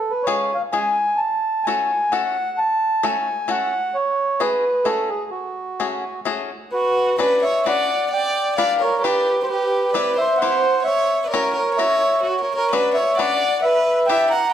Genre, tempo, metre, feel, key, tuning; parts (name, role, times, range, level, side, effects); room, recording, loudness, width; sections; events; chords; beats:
musette waltz; 131 BPM; 3/4; rubato; F# harmonic minor, B harmonic minor from 6.7 s; A4 = 440 Hz
mellow accordion; melody; 0.0-14.5 s; F#4 to A#5; -18 LUFS; equal
bluegrass banjo; accompaniment; 0.3-14.3 s; G#3 to B4; -26 LUFS; left 6 dB
rich violin; second line; 6.7-14.5 s; F#4 to F#5; -26 LUFS; right 1 dB
wet recital hall reverb, RT60 1.6 s; dark, warm production; -17 LUFS; side -10 dB against mid
0.0-6.7 A section; 6.7-14.5 B section
0.0 C#; 1.2 F#m; 3.9 F#madd9; 6.7 Bmadd9; 8.1 G7; 9.5 Cmaj7; 10.9 F#7; 12.3 Bmadd9; 13.6 Em7
0.27 0.73 | 1.20 1.66 2.12 | 2.58 3.04 3.50 | 3.95 4.40 4.86 | 5.32 5.78 6.25 | 6.72 7.19 7.66 | 8.12 8.57 9.03 | 9.49 9.94 10.40 | 10.87 11.33 11.79 | 12.27 12.73 13.19 | 13.64 14.10